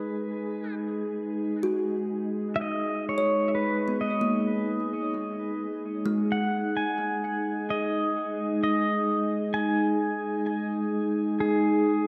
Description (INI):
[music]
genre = ambient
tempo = 65 BPM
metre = 3/4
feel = straight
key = G# minor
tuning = A4 = 442 Hz
[part]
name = pedal steel guitar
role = melody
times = 0.0-12.1 s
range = G#4 to G#5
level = -32 LUFS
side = equal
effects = tape echo
[part]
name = glassy FM pad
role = sustained chords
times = 0.0-12.1 s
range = G#3 to G#4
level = -30 LUFS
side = equal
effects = ensemble chorus, built-in reverb
[part]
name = kalimba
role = arpeggios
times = 0.0-9.0 s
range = G#3 to F#6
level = -34 LUFS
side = equal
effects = tape echo
[sound]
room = wet spring reverb, RT60 2.4 s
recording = echo-heavy mix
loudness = -28 LUFS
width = mono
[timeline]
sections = 0.0-12.1 A section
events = fade-out on kalimba 0.0-12.1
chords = 0.0 G#m7